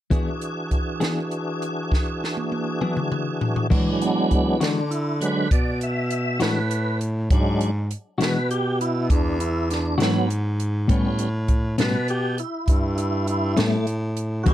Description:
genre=slow blues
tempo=67 BPM (dotted quarters)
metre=12/8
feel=straight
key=E mixolydian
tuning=A4 = 441 Hz
part: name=clean electric guitar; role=accompaniment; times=0.1-14.5 s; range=A2 to G#4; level=-23 LUFS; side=left 3 dB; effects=harmonic tremolo
part: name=tonewheel organ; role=sustained chords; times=0.1-14.5 s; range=E3 to E5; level=-25 LUFS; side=right 1 dB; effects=slow rotary speaker, overdrive, chorus vibrato
part: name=compact cocktail drum kit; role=drums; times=0.1-14.5 s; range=crash cymbal, hi-hat, kick drum, snare drum, toms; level=-23 LUFS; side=equal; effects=none
part: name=breathy baritone saxophone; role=bass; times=3.7-14.5 s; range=E2 to E3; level=-24 LUFS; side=equal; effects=none
room=studio ambience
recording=dark, warm production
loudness=-20 LUFS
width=side -12 dB against mid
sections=0.1-3.7 A section; 3.7-14.5 B section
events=drum fill 1.9-3.7; tonewheel organ solo 3.7-14.5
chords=0.1 E7; 3.7 E9; 10.9 A9

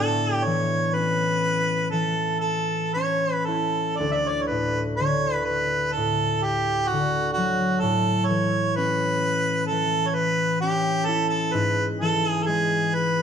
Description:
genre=celtic folk, Celtic slow air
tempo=57-66 BPM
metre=4/4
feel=rubato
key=unclear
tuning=A4 = 440 Hz
part: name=warm harmonica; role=melody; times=0.0-13.2 s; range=F#4 to E5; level=-23 LUFS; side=right 2 dB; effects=none
part: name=concert harp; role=accompaniment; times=0.0-13.2 s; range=D2 to E4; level=-25 LUFS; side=left 2 dB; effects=none
room=moderate recital hall reverb, RT60 1.5 s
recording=none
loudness=-21 LUFS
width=side -8 dB against mid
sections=0.0-13.2 A section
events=none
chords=0.0 A; 4.0 D; 7.8 A; 11.5 E/G#

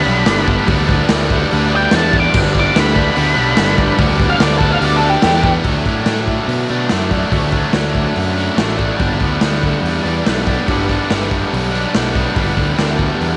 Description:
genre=garage rock duo or trio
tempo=144 BPM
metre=4/4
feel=straight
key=unclear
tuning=A4 = 440 Hz
part: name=octave-fuzz lead guitar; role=melody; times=0.0-5.5 s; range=G4 to D6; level=-20 LUFS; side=equal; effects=distortion, tape echo
part: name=biting overdriven guitar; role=riff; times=0.0-13.4 s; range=G2 to D4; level=-20 LUFS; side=equal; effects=none
part: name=fuzz picked electric bass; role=bass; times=0.1-13.4 s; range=G1 to B2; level=-21 LUFS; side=equal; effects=overdrive
part: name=raw garage drum kit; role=drums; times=0.3-13.3 s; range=crash cymbal, hi-hat, kick drum, snare drum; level=-20 LUFS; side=equal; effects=none
room=small room ambience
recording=nothing above 11.0 kHz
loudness=-15 LUFS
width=mono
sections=0.0-5.7 A section; 5.7-13.4 B section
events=lead electric guitar solo 0.0-5.7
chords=0.0 G; 5.7 D; 9.0 G

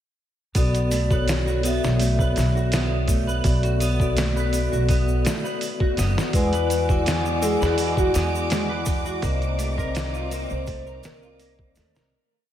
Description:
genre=trip hop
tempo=83 BPM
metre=4/4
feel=straight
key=B dorian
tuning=A4 = 442 Hz
part: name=clean electric guitar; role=arpeggios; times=0.5-12.1 s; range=G#3 to B4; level=-30 LUFS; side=right 4 dB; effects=ensemble chorus, tape echo
part: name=trip hop sampler-style drum kit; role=drums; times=0.5-12.1 s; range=hi-hat, kick drum, snare drum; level=-26 LUFS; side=equal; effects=none
part: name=vibraphone with medium hard mallets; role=accompaniment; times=0.6-12.1 s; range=B3 to G#5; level=-27 LUFS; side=left 2 dB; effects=harmonic tremolo, tape echo
part: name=upright bass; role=bass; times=0.6-12.1 s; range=F#1 to E2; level=-24 LUFS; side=equal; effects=none
part: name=tube shaker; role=percussion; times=0.6-12.1 s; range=none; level=-39 LUFS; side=left 2 dB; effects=none
part: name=pure breathy sine lead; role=melody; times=6.3-11.5 s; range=F#4 to C5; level=-28 LUFS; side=left 3 dB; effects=wide subtle chorus, dub echo
part: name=rich studio violin section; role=sustained chords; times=6.3-12.1 s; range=G#3 to D6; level=-33 LUFS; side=right 1 dB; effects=vintage 12-bit sampler grit
room=light reverb, small room ambience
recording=none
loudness=-20 LUFS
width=side -11 dB against mid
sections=0.6-12.1 groove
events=fade-out 8.3-12.1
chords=0.6 Bm7; 6.3 E9; 9.2 Cmadd9

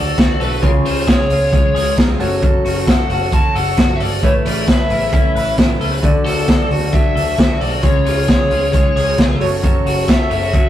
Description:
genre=jangly indie pop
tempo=133 BPM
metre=4/4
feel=straight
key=D major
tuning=A4 = 440 Hz
part: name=biting lead guitar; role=melody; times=0.0-10.7 s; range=A4 to A5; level=-20 LUFS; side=left 2 dB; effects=overdrive
part: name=chorused retro synth keys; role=accompaniment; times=0.0-10.7 s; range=E#4 to D5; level=-24 LUFS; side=equal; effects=none
part: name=electric guitar at the edge of break-up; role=accompaniment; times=0.0-10.7 s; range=C#3 to C#5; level=-26 LUFS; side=right 2 dB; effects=none
part: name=clean electric guitar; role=arpeggios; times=0.0-10.7 s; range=F#2 to B4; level=-22 LUFS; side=left 2 dB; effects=warbly pitch drift
part: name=vintage muted picked electric bass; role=bass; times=0.0-10.6 s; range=F#1 to D2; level=-23 LUFS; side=equal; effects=none
part: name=raw garage drum kit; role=drums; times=0.2-10.6 s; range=hi-hat, kick drum, snare drum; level=-15 LUFS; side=equal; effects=none
room=moderate stone room reverb, RT60 1.1 s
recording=rough rehearsal-room recording, warm saturation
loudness=-12 LUFS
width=side -12 dB against mid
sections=0.0-10.7 A section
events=none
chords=0.0 D; 0.6 C#; 2.2 F#m; 4.2 Aadd9; 6.0 D; 7.8 C#; 9.4 F#m

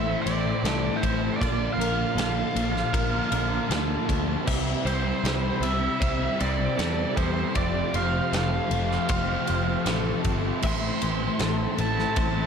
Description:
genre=rock, shoegaze and dream pop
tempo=78 BPM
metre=4/4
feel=straight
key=A minor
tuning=A4 = 440 Hz
part: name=biting lead guitar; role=melody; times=0.0-12.5 s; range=C5 to C6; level=-30 LUFS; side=right 3 dB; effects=overdrive, slapback echo
part: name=string machine, violas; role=sustained chords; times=0.0-12.5 s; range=G4 to E6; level=-38 LUFS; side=left 1 dB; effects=ensemble chorus
part: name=twelve-string electric guitar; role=arpeggios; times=0.0-12.5 s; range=A4 to B5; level=-36 LUFS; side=left 5 dB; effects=ensemble chorus, slapback echo
part: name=distorted electric guitar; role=riff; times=0.0-12.5 s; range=A2 to A4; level=-34 LUFS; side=right 1 dB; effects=distortion
part: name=thick fuzz guitar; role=riff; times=0.0-12.5 s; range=F2 to C4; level=-31 LUFS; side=left 10 dB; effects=distortion, lush chorus
part: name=twangy electric guitar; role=riff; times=0.0-12.5 s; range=A2 to G4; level=-32 LUFS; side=right 13 dB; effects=reverse reverb
part: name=picked electric bass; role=bass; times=0.0-12.4 s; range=F1 to E2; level=-29 LUFS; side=equal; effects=none
part: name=big rock drum kit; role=drums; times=0.3-12.3 s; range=crash cymbal, kick drum, ride cymbal, snare drum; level=-30 LUFS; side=equal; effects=none
room=light reverb, small room ambience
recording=none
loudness=-23 LUFS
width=side -7 dB against mid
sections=0.0-12.5 A section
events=none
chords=0.0 Am; 1.4 Bbmaj7; 4.5 Cmaj7; 7.6 Fadd9; 10.6 Am

